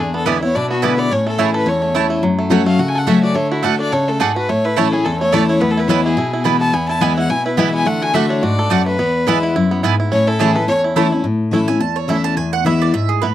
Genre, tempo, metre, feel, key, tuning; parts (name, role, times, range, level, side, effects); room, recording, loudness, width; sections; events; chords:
bluegrass; 213 BPM; 4/4; swing 56% on 8ths; A major; A4 = 439 Hz
bluegrass banjo; melody; 0.0-13.3 s; F#3 to A4; -22 LUFS; right 3 dB
clear fiddle; melody; 0.0-10.8 s; E4 to A5; -20 LUFS; left 2 dB
picked steel-string acoustic guitar; accompaniment; 0.0-13.3 s; E2 to F#4; -16 LUFS; left 2 dB
mandolin; stabs; 0.3-13.3 s; A3 to A5; -18 LUFS; right 11 dB
light reverb; dry, close 1970s-style studio recording; -14 LUFS; side -12 dB against mid
0.0-2.2 A section; 2.2-11.2 B section; 11.2-13.3 C section
mandolin solo 11.2-13.3
0.0 E7; 1.1 A; 2.2 F#m; 3.4 D; 4.5 A; 5.6 E; 7.9 D; 9.0 E; 10.1 A; 12.4 E